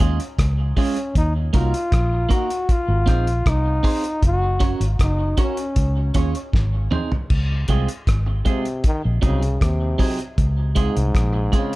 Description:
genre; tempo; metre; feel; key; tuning
roots reggae; 78 BPM; 4/4; straight; Db major; A4 = 438 Hz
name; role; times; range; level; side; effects
clean electric guitar; accompaniment; 0.0-11.7 s; Gb3 to Db5; -28 LUFS; right 4 dB; dub echo
vintage muted fingered electric bass; bass; 0.0-11.5 s; Gb1 to Eb2; -20 LUFS; equal; none
cloth-damped thuddy drum kit; drums; 0.0-11.8 s; crash cymbal, hi-hat, kick drum, rim click, snare drum, toms; -20 LUFS; equal; none
breathy trombone; melody; 0.8-11.8 s; Ab2 to Gb4; -26 LUFS; left 1 dB; dub echo
room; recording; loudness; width
small room ambience; dark, warm production; -18 LUFS; side -19 dB against mid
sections
0.0-7.3 A section; 7.3-11.8 B section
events
drum fill 6.5-7.3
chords
0.0 Db; 1.2 Ebm; 2.7 Ab; 4.2 Gb; 5.8 Db; 6.5 Ab; 7.3 Dbmaj7; 8.8 Ab7; 10.4 Dbmaj7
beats
0.39 | 1.15 1.92 2.69 3.46 | 4.23 5.00 5.76 6.53 | 7.30 8.07 8.84 9.61 | 10.38 11.14

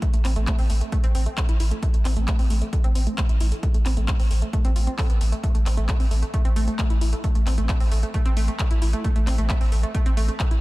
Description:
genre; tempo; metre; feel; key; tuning
driving peak-time techno; 133 BPM; 4/4; straight; A minor; A4 = 440 Hz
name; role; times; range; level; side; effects
analog pluck; riff; 0.0-10.5 s; A3 to A4; -30 LUFS; right 1 dB; chorus, sidechain pumping, diffuse ambient delay
electronic kick drum; drums; 0.0-10.5 s; none; -22 LUFS; equal; none
techno drum kit; drums; 0.0-10.6 s; handclaps, hi-hat; -33 LUFS; left 1 dB; sidechain pumping on hats
saturated sub bass; bass; 0.1-10.6 s; A1; -23 LUFS; equal; overdrive, sidechain pumping, low-pass filter
room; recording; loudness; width
little or no reverb; none; -20 LUFS; side -20 dB against mid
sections
0.0-10.6 A section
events
filter sweep on synth arpeggio sound 0.0-10.6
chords
none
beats
| 0.02 0.47 0.92 1.38 | 1.83 2.28 2.73 3.18 | 3.63 4.08 4.53 4.98 | 5.43 5.89 6.34 6.79 | 7.24 7.69 8.14 8.59 | 9.04 9.49 9.95 10.40

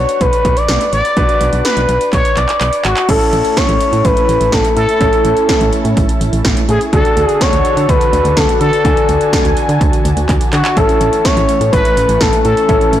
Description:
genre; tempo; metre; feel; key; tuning
synth-pop; 125 BPM; 4/4; straight; A major; A4 = 440 Hz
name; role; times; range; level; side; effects
expressive synth lead; melody; 0.0-13.0 s; F#4 to D5; -14 LUFS; left 2 dB; chorus, tape echo, shimmer reverb
warm concert grand piano; accompaniment; 0.0-13.0 s; C#4 to G#5; -22 LUFS; right 1 dB; shimmer reverb
solid FM bass; bass; 0.0-13.0 s; G#1 to D3; -16 LUFS; right 1 dB; none
80s electronic pad drums; drums; 0.1-13.0 s; crash cymbal, handclaps, hi-hat, kick drum, snare drum; -16 LUFS; right 1 dB; none
warm analog pad; sustained chords; 3.1-13.0 s; D3 to G#5; -21 LUFS; right 2 dB; chorus, shimmer reverb
room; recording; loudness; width
moderate plate reverb, RT60 2.6 s; blown-out, overdriven recording, overdrive; -10 LUFS; side -11 dB against mid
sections
0.0-3.1 A section; 3.1-13.0 B section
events
drum fill 2.1-3.1, 10.3-10.8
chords
0.0 Bm; 3.1 A; 6.9 D; 10.8 A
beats
0.21 0.69 | 1.17 1.65 2.13 2.61 | 3.09 3.57 4.05 4.53 | 5.01 5.49 5.97 6.45 | 6.93 7.41 7.89 8.37 | 8.85 9.33 9.81 10.29 | 10.77 11.25 11.73 12.21 | 12.69

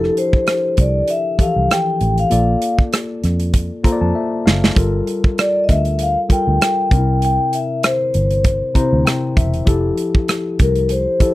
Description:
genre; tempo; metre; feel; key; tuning
lush 1970s-style soul; 98 BPM; 4/4; swing 54% on 16ths; unclear; A4 = 440 Hz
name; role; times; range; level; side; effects
vibraphone with soft mallets; melody; 0.0-11.3 s; A4 to G5; -18 LUFS; left 1 dB; none
tine electric piano; accompaniment; 0.0-11.3 s; C3 to Bb5; -21 LUFS; left 3 dB; none
vintage muted fingered electric bass; bass; 0.0-11.2 s; E1 to F2; -18 LUFS; equal; none
modern studio drum kit; drums; 0.0-11.3 s; hi-hat, kick drum, rim click, snare drum; -16 LUFS; right 1 dB; none
room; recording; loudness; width
little or no reverb; dry, close 1970s-style studio recording; -14 LUFS; side -17 dB against mid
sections
0.0-11.3 A section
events
tine electric piano fill 3.5-4.8, 8.4-9.7; drum fill 4.2-4.8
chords
0.0 Fmaj9; 2.3 Bbmaj7; 4.8 Gm9; 6.9 C7; 9.7 Fmaj9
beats
0.47 1.08 1.70 | 2.31 2.92 3.54 4.15 | 4.76 5.38 5.99 6.61 | 7.22 7.83 8.45 9.06 | 9.67 10.29 10.90

